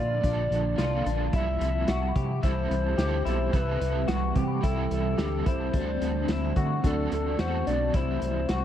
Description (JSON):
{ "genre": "dream pop", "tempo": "109 BPM", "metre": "4/4", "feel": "straight", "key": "C lydian", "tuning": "A4 = 441 Hz", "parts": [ { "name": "warbly nostalgic lead", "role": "melody", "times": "0.0-8.6 s", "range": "A4 to E5", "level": "-32 LUFS", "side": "equal", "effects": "chorus, tape echo" }, { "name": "overdriven semi-hollow guitar", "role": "accompaniment", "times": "0.0-8.6 s", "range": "Bb2 to A4", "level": "-35 LUFS", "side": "right 5 dB", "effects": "tremolo, analog chorus" }, { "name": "ethereal airy pad", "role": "sustained chords", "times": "0.0-8.6 s", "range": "D3 to G4", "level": "-34 LUFS", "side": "equal", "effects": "ensemble chorus, built-in reverb, phaser" }, { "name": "electric guitar at the edge of break-up", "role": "arpeggios", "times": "0.0-8.6 s", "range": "D4 to G4", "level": "-33 LUFS", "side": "left 4 dB", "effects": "analog chorus, tape echo" }, { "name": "fat analog bass", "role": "bass", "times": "0.0-8.6 s", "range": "Bb1 to D3", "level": "-29 LUFS", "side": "equal", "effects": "none" }, { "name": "vintage drum kit", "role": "drums", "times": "0.2-8.6 s", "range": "hi-hat, kick drum, snare drum", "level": "-29 LUFS", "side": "equal", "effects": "none" }, { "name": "small celesta", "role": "texture", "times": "2.1-5.8 s", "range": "G5 to B5", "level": "-43 LUFS", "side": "right 1 dB", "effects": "tape echo" } ], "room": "moderate spring reverb, RT60 1.7 s, studio reverb", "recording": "echo-heavy mix", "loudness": "-24 LUFS", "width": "side -10 dB against mid", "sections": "0.0-8.6 A section", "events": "none", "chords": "0.0 Bbmaj7; 1.3 C6; 5.7 D7; 7.9 C" }